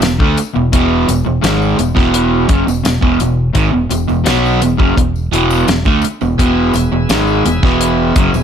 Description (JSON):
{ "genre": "classic rock", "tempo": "85 BPM", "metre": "4/4", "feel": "straight", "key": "E major", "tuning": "A4 = 439 Hz", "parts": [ { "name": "crunchy overdriven guitar", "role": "riff", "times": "0.0-8.4 s", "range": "E2 to B3", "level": "-16 LUFS", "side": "right 11 dB", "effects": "none" }, { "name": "overdriven semi-hollow guitar", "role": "riff", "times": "0.0-8.4 s", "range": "E2 to B3", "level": "-16 LUFS", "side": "left 9 dB", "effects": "none" }, { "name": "fingered electric bass", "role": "bass", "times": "0.0-8.4 s", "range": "E1 to D2", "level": "-18 LUFS", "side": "equal", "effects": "none" }, { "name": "damped 70s drum kit", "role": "drums", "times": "0.0-8.3 s", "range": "hi-hat, kick drum, snare drum", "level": "-15 LUFS", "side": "left 1 dB", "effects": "none" }, { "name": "tambourine", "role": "percussion", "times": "0.0-8.4 s", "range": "none", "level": "-31 LUFS", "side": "left 15 dB", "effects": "none" }, { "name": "bright tonewheel organ", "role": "sustained chords", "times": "6.4-8.4 s", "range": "B3 to E5", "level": "-23 LUFS", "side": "left 1 dB", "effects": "slow rotary speaker, overdrive" } ], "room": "light reverb, small room ambience", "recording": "none", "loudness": "-11 LUFS", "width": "side -8 dB against mid", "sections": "0.0-8.4 A section", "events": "none", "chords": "0.0 E" }